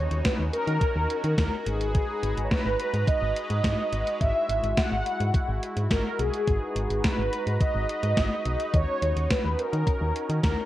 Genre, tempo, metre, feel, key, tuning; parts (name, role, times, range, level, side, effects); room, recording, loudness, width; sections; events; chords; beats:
synth-pop; 106 BPM; 4/4; straight; G# minor; A4 = 440 Hz
mellow synth brass; melody; 0.0-10.6 s; G#4 to F#5; -28 LUFS; equal; chorus, phaser, slapback echo
sweeping resonant pad; sustained chords; 0.0-10.7 s; G#3 to A#5; -35 LUFS; equal; chorus
solid FM bass; bass; 0.0-10.5 s; G#1 to D#3; -28 LUFS; equal
downlifter; sound effects; 0.0-1.9 s; -48 LUFS; equal
gated 80s digital drum machine; drums; 0.1-10.6 s; hi-hat, kick drum, snare drum; -26 LUFS; equal; gated reverb, gated reverb snare
light reverb, digital ambience; worn, warbling old tape, cassette tape, warbly pitch drift; -23 LUFS; side -14 dB against mid
0.0-10.7 A section
0.0 D#m7; 1.7 G#m7; 4.2 Eadd9/G#; 6.5 G#m7; 8.7 D#m7
0.25 0.81 1.38 | 1.95 2.51 3.08 3.65 | 4.21 4.78 5.34 5.91 | 6.47 7.04 7.61 8.17 | 8.74 9.30 9.87 10.44